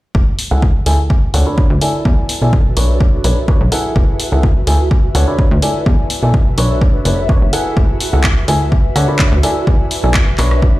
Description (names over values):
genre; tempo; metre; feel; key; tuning
piano house; 126 BPM; 4/4; straight; F# minor; A4 = 438 Hz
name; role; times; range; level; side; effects
plucky analog bass; bass; 0.1-10.7 s; F#1 to E2; -15 LUFS; equal; tube saturation, sidechain pumping
electronic kick drum; drums; 0.1-10.7 s; none; -13 LUFS; equal; none
ethereal airy pad; texture; 1.4-10.8 s; F#4 to E5; -25 LUFS; equal; ensemble chorus, built-in reverb, phaser, sidechain pumping
house drum kit; drums; 0.4-10.6 s; handclaps, hi-hat, rim click; -21 LUFS; left 1 dB; none
bright baby grand piano; riff; 0.5-10.8 s; D4 to C#6; -19 LUFS; equal; sidechain pumping, low-pass filter, ping-pong delay
room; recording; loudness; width
digital ambience; played on a big sound system in a bare room, large studio reverb; -11 LUFS; side -17 dB against mid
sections
0.1-10.8 A section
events
none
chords
0.1 F#m9; 1.1 Dmaj7; 2.1 E9sus4; 2.8 Bm9; 4.0 F#m9; 4.9 Dmaj7; 5.9 E9sus4; 6.6 F#m9; 8.7 Dmaj7; 9.7 E9sus4